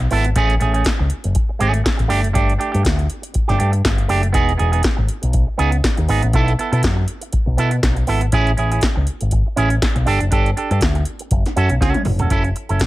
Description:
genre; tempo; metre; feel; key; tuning
disco; 120 BPM; 4/4; swing 56% on 16ths; unclear; A4 = 442 Hz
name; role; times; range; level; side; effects
electric guitar with an envelope filter; accompaniment; 0.0-12.8 s; A3 to A4; -21 LUFS; right 4 dB; none
picked electric bass with an envelope filter; bass; 0.0-12.9 s; E1 to B2; -18 LUFS; equal; none
electro analog drum machine; drums; 0.1-12.9 s; handclaps, hi-hat, kick drum, snare drum, toms; -20 LUFS; equal; none
room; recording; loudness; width
little or no reverb; none; -15 LUFS; side -17 dB against mid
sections
0.0-12.3 A section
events
drum fill 11.8-12.3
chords
0.4 Amaj7; 2.1 Gsus2; 4.3 Emaj7; 6.3 B7sus4; 8.3 Amaj7; 10.1 Gsus2; 11.3 F#m; 12.3 F#m7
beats
| 0.36 0.86 1.36 1.85 | 2.35 2.85 3.35 3.85 | 4.34 4.84 5.34 5.84 | 6.34 6.83 7.33 7.83 | 8.33 8.82 9.32 9.82 | 10.32 10.81 11.31 11.81 | 12.31 12.81

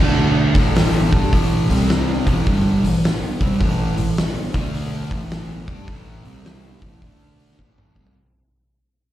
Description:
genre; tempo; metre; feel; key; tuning
blues rock power trio and southern rock; 105 BPM; 4/4; swing 65% on 8ths; unclear; A4 = 440 Hz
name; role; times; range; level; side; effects
fuzz guitar; riff; 0.0-8.2 s; G2 to G4; -20 LUFS; right 1 dB; distortion, slapback echo
upright bass; bass; 0.0-8.1 s; G1 to G2; -24 LUFS; equal; none
oversized low-tuned drum kit; drums; 0.5-8.2 s; hi-hat, kick drum, snare drum, toms; -20 LUFS; equal; none
room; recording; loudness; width
light reverb; live gig heard through the venue's PA, recital hall reverb; -16 LUFS; side -13 dB against mid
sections
0.0-8.2 A section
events
fade-out 0.0-8.2; drum fill 7.6-8.2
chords
0.5 A5; 1.6 C5; 2.2 A5; 4.5 D5; 5.0 A5; 6.2 C5; 6.7 A5; 7.0 D5; 7.6 A5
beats
0.18 0.75 | 1.32 1.90 2.47 3.04 | 3.61 4.18 4.75 5.32 | 5.88 6.45 7.02 7.59

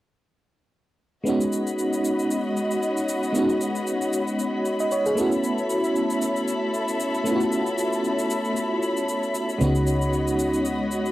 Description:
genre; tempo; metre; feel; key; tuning
amapiano; 115 BPM; 4/4; swing 55% on 16ths; C# minor; A4 = 444 Hz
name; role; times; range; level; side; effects
FM electric piano with tremolo; accompaniment; 1.2-11.1 s; G#3 to D#5; -23 LUFS; equal; phaser, cassette tape
dark studio string section; sustained chords; 1.3-11.1 s; F#4 to B5; -28 LUFS; equal; cassette tape
shaker; drums; 1.3-11.1 s; none; -37 LUFS; left 2 dB; cassette tape
fingered electric bass; bass; 9.6-11.1 s; C#2; -24 LUFS; equal; none
room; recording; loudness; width
light reverb; home recording on cassette; -22 LUFS; side -15 dB against mid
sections
1.3-11.1 A section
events
none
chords
1.3 C#9sus4; 5.2 B9sus4; 9.6 C#9sus4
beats
| 1.26 1.78 2.31 2.83 | 3.35 3.87 4.39 4.92 | 5.44 5.96 6.48 7.00 | 7.52 8.05 8.57 9.09 | 9.61 10.13 10.65

